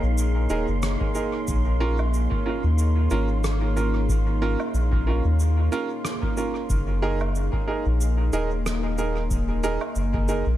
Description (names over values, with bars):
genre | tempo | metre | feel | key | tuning
ambient dub | 92 BPM | 4/4 | swing 56% on 16ths | Bb minor | A4 = 440 Hz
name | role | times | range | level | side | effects
deep dark ambient pad | sustained chords | 0.0-10.6 s | Bb3 to F5 | -30 LUFS | left 2 dB | chorus, built-in reverb
soft dub sub bass | bass | 0.0-10.6 s | Eb1 to Eb2 | -23 LUFS | equal | none
wind-like tuned noise texture | texture | 0.0-10.6 s | C6 | -40 LUFS | right 4 dB | built-in reverb
cabasa, rim click and woodblock | drums | 0.2-10.4 s | none | -35 LUFS | right 2 dB | dub echo
bright upright piano | stabs | 0.5-10.4 s | Db4 to Bb4 | -29 LUFS | right 4 dB | dub echo
electronic kick drum | drums | 1.0-10.3 s | none | -28 LUFS | equal | none
room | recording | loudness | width
studio reverb | none | -21 LUFS | side -13 dB against mid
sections
0.0-10.6 A section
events
none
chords
0.0 Gb6; 1.5 Bbm; 6.7 Gb6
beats
0.18 0.83 | 1.48 2.13 2.79 3.44 | 4.09 4.74 5.39 6.05 | 6.70 7.35 8.00 8.65 | 9.31 9.96